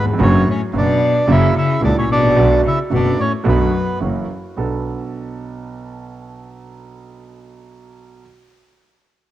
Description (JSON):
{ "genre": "tango", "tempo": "110 BPM", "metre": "4/4", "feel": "rubato", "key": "B minor", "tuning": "A4 = 440 Hz", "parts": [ { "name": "bandoneon", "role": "melody", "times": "0.0-4.0 s", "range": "B3 to E5", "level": "-19 LUFS", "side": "right 2 dB", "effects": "cassette tape" }, { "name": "warm cello", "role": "second line", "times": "0.0-4.0 s", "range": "F#2 to C#3", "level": "-19 LUFS", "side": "left 5 dB", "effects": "none" }, { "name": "warm concert grand piano", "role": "accompaniment", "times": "0.0-8.2 s", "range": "F#1 to A4", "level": "-22 LUFS", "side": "right 5 dB", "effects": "none" }, { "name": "clear double bass", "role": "bass", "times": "0.2-4.8 s", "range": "F#1 to C#2", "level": "-18 LUFS", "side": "equal", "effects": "none" } ], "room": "wet spring reverb, RT60 2.4 s", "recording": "home recording on cassette", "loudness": "-14 LUFS", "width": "side -13 dB against mid", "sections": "0.0-4.6 A section; 4.6-6.8 B section", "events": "none", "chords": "0.2 Bm/F#; 1.3 F#7; 2.4 Bm7; 4.0 F#7; 4.6 Bm7" }